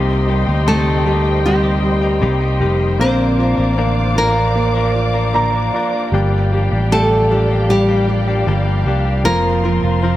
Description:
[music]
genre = pop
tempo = 77 BPM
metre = 4/4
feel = straight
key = G minor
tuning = A4 = 440 Hz
[part]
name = warm concert grand piano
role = accompaniment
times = 0.0-10.2 s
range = C3 to Bb5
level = -20 LUFS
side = right 1 dB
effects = none
[part]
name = muted studio string section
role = sustained chords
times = 0.0-10.2 s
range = G4 to D6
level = -24 LUFS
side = left 1 dB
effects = none
[part]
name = direct-recorded clean electric guitar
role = arpeggios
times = 0.0-10.2 s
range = G2 to Bb4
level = -23 LUFS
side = left 5 dB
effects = none
[part]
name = fingered electric bass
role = bass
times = 0.0-10.2 s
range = F1 to D2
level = -17 LUFS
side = equal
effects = none
[part]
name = nylon-string guitar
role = melody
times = 0.7-10.0 s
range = G3 to C5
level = -18 LUFS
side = equal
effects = none
[sound]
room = light reverb, small room ambience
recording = none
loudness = -13 LUFS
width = side -14 dB against mid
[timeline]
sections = 0.0-10.2 A section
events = grand piano fill 4.9-6.1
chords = 0.0 Cm7; 3.0 Bb; 6.1 Gm7; 9.2 Fsus4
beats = 0.67 1.44 2.22 | 3.00 3.77 4.56 5.34 | 6.13 6.91 7.69 8.47 | 9.25 10.03

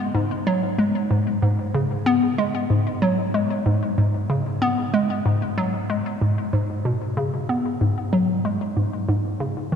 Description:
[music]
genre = ambient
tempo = 94 BPM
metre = 4/4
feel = straight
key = G# minor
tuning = A4 = 440 Hz
[part]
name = hollow square pluck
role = solo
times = 0.1-9.8 s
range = G#2 to B3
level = -20 LUFS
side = equal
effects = chorus, cassette tape, ping-pong delay
[sound]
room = wet cathedral reverb, RT60 5.5 s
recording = in a vast, echoing space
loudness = -20 LUFS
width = side -7 dB against mid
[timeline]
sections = 0.0-9.8 A section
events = none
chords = none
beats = | 0.15 0.79 1.42 2.06 | 2.70 3.34 3.98 4.62 | 5.25 5.89 6.53 7.17 | 7.81 8.45 9.08 9.72

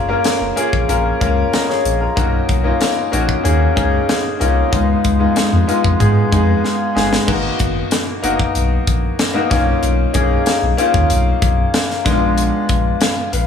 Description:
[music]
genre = polished 1980s jazz-funk pop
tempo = 94 BPM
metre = 4/4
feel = straight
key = unclear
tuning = A4 = 440 Hz
[part]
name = bright grand piano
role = accompaniment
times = 0.0-13.5 s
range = G#3 to G#5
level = -16 LUFS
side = left 2 dB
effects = wide subtle chorus
[part]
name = sub bass with octave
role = bass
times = 0.0-13.5 s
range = F#1 to G#2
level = -17 LUFS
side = left 1 dB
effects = none
[part]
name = crisp fusion drum kit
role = drums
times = 0.2-13.5 s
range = crash cymbal, hi-hat, kick drum, snare drum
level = -20 LUFS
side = left 1 dB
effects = none
[sound]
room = moderate plate reverb, RT60 2.0 s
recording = dreamy mix soaked in reverb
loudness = -13 LUFS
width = side -7 dB against mid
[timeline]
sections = 0.0-7.3 A section; 7.3-13.5 B section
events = grand piano fill 6.3-7.3; drum fill 6.6-7.3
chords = 0.0 F#maj7; 2.2 Bmaj9; 4.7 C#7; 7.3 G#m7; 9.5 Bmaj9#11; 12.1 A#7b9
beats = 0.25 0.89 1.53 | 2.17 2.81 3.45 4.09 | 4.73 5.37 6.00 6.64 | 7.28 7.92 8.56 9.19 | 9.83 10.47 11.10 11.74 | 12.38 13.01

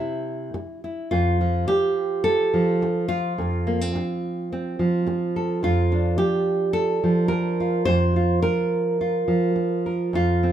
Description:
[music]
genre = folk, solo fingerstyle acoustic guitar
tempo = 106 BPM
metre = 4/4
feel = straight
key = F major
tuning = A4 = 441 Hz
[part]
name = nylon-string guitar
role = solo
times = 0.0-10.5 s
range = F2 to D5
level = -20 LUFS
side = right 1 dB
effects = none
[sound]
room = moderate large studio reverb, RT60 1.2 s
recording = minimal, uncompressed stereo recording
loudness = -20 LUFS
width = side -10 dB against mid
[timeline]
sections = 0.0-1.1 A section; 1.1-10.5 B section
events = none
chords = 0.0 Cadd9; 1.1 F; 5.6 Bb/F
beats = 0.55 | 1.12 1.69 2.25 2.82 | 3.38 3.95 4.51 5.07 | 5.63 6.19 6.75 7.31 | 7.87 8.43 9.00 9.57 | 10.13

